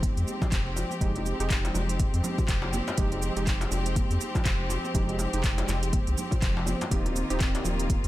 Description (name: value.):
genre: afro house.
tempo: 122 BPM.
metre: 4/4.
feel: swing 58% on 16ths.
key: F minor.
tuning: A4 = 439 Hz.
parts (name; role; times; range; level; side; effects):
clear symphonic string section; sustained chords; 0.0-8.1 s; Eb3 to G4; -34 LUFS; left 1 dB; sidechain pumping.
warm analog keys; stabs; 0.0-8.1 s; Ab3 to G4; -35 LUFS; right 1 dB; chorus, sidechain pumping, digital delay.
round analog bass; bass; 0.0-8.1 s; Eb1 to F2; -30 LUFS; equal; sidechain pumping.
afro-pop drum kit; drums; 0.0-8.1 s; handclaps, hi-hat, shaker; -35 LUFS; right 1 dB; studio reverb.
electronic kick drum; drums; 0.0-8.0 s; none; -28 LUFS; equal; studio reverb.
congas; percussion; 0.0-8.0 s; none; -38 LUFS; right 3 dB; none.
djembe; percussion; 0.4-7.8 s; none; -38 LUFS; left 3 dB; none.
room: little or no reverb.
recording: none.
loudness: -25 LUFS.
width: side -15 dB against mid.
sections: 0.0-8.1 A section.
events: none.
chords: 0.0 Fm9; 6.9 Eb6.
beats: 0.03 0.52 | 1.01 1.50 2.00 2.49 | 2.98 3.47 3.96 4.46 | 4.95 5.44 5.93 6.42 | 6.91 7.41 7.90.